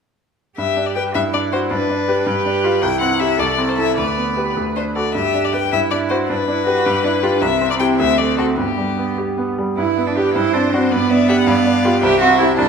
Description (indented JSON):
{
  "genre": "quick classical-period movement for piano quartet",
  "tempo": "106 BPM (dotted quarters)",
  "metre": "6/8",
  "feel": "rubato",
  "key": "G major",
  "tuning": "A4 = 440 Hz",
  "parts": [
    { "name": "rich violin", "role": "melody", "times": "0.6-12.7 s", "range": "G4 to A5", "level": "-21 LUFS", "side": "left 9 dB", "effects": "none" },
    { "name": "rich cello", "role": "second line", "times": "0.6-12.7 s", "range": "B3 to B4", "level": "-19 LUFS", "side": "right 5 dB", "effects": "none" },
    { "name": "bright concert grand piano", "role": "accompaniment", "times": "0.6-12.7 s", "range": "C2 to C5", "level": "-19 LUFS", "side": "right 1 dB", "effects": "none" },
    { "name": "clear violin", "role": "second line", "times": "10.4-12.7 s", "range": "A4 to E5", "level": "-24 LUFS", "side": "left 4 dB", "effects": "none" }
  ],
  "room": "moderate scoring stage reverb, RT60 1.9 s",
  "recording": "minimal, uncompressed stereo recording",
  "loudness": "-15 LUFS",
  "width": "side -6 dB against mid",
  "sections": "0.6-9.8 A section; 9.8-12.7 A section",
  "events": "none",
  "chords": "0.6 G; 1.1 D7/G; 1.7 G; 2.3 G7; 2.8 C; 3.4 Am/C; 4.0 G/D; 4.6 D; 5.1 G; 5.7 D7/G; 6.3 G; 6.9 G7; 7.4 C; 8.0 D7; 8.6 G; 10.4 D7/G; 10.9 G; 11.5 G7; 12.0 C"
}